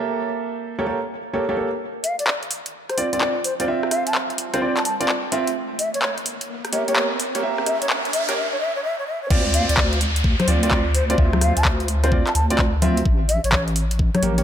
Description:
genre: UK garage, two-step garage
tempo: 128 BPM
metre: 4/4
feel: swing 66% on 16ths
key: D minor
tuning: A4 = 440 Hz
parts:
  - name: warm concert grand piano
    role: stabs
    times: 0.0-14.4 s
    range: Bb3 to E5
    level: -24 LUFS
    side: right 2 dB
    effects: digital delay
  - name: riser, noise sweep and downlifter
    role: sound effects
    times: 3.5-13.1 s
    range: none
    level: -30 LUFS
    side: right 1 dB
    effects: none
  - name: baroque flute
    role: melody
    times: 2.0-14.2 s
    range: C5 to A5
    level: -26 LUFS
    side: left 1 dB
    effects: digital delay
  - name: garage drum kit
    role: drums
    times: 2.0-14.4 s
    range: congas, crash cymbal, handclaps, hi-hat, rim click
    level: -24 LUFS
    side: left 1 dB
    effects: high-pass filter on hats, high-pass filter on snare, high-pass filter on cymbals, high-pass filter on perc, high-pass filter on room
  - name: deep soft wobble bass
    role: bass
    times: 9.3-14.4 s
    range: A1 to D2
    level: -20 LUFS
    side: equal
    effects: chorus
  - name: electronic kick drum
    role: drums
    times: 9.3-14.1 s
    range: none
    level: -20 LUFS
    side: equal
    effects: none
room: light reverb, digital ambience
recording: high-pass filter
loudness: -19 LUFS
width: side -10 dB against mid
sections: 0.0-1.8 A section; 1.8-9.3 B section; 9.3-14.4 C section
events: build-up 1.8-9.3; riser 3.5-8.4; noise sweep 7.4-9.3; break 8.4-9.3; drop 9.3-14.4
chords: 0.0 A7b9; 1.8 Dm7; 5.6 A#dim7(no3); 9.3 Dm7; 13.1 N.C.

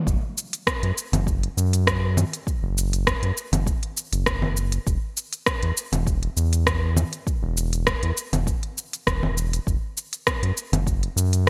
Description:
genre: organic downtempo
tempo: 100 BPM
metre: 4/4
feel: swing 54% on 16ths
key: unclear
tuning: A4 = 440 Hz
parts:
  - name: round analog bass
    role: bass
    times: 0.1-11.5 s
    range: E1 to F#2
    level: -25 LUFS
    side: equal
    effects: tube saturation
  - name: electronic kick drum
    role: drums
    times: 0.1-11.5 s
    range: none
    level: -29 LUFS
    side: equal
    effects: none
  - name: organic electronic drum kit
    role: drums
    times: 0.1-11.5 s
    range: cabasa, congas, hi-hat, rim click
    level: -27 LUFS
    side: equal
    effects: low-pass filter on perc, low-pass filter on toms, low-pass filter on hats, low-pass filter on snare, gated reverb
room: light reverb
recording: bright 1980s-style digital production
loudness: -24 LUFS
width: mono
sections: 0.1-11.5 A section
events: none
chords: none

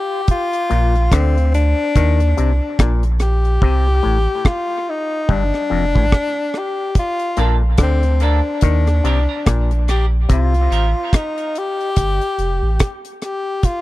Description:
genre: dub reggae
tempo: 72 BPM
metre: 4/4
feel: swing 59% on 16ths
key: Bb major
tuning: A4 = 440 Hz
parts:
  - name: breathy tenor saxophone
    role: melody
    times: 0.0-13.8 s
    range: C4 to G4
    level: -20 LUFS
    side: left 2 dB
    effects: dub echo
  - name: deep reggae drum kit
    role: drums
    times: 0.3-13.8 s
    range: hi-hat, kick drum, rim click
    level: -16 LUFS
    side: equal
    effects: none
  - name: auto-wah clav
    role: riff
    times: 0.7-10.5 s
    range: F2 to Eb3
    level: -25 LUFS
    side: left 5 dB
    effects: dub echo
  - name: warm sub bass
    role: bass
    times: 0.7-12.8 s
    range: F1 to Eb2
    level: -16 LUFS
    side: equal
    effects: none
  - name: semi-hollow electric guitar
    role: accompaniment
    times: 7.4-10.9 s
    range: Bb3 to Bb4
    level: -29 LUFS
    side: right 7 dB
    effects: high-pass filter, dub echo
  - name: clear upright piano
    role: stabs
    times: 7.4-10.9 s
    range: D4 to D5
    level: -32 LUFS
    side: left 4 dB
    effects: high-pass filter, dub echo
room: small room ambience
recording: dry, close 1970s-style studio recording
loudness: -15 LUFS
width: side -17 dB against mid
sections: 0.0-13.8 A section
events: break 0.0-7.0, 10.3-13.8; hi-hats muted 3.6-7.0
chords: 0.3 Bb; 1.9 Eb5; 3.6 C5; 5.3 G5; 7.0 Bbmaj7; 8.6 Ebmaj7; 10.3 Cm7; 12.0 Fadd9

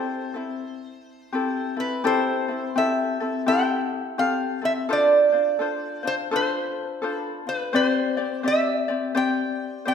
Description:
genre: Hawaiian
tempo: 84 BPM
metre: 4/4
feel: swing 62% on 8ths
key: unclear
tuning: A4 = 440 Hz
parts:
  - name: lap resonator guitar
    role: melody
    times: 0.0-9.9 s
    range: B4 to G5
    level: -24 LUFS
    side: right 2 dB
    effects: none
  - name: ukulele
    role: accompaniment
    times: 0.0-9.9 s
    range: C4 to D5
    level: -24 LUFS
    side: left 4 dB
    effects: none
room: wet concert hall reverb, RT60 1.8 s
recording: minimal, uncompressed stereo recording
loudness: -21 LUFS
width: side -7 dB against mid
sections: 0.0-2.0 A section; 2.0-9.9 B section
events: none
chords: 0.0 C6; 4.9 Dm7; 7.7 Gsus4

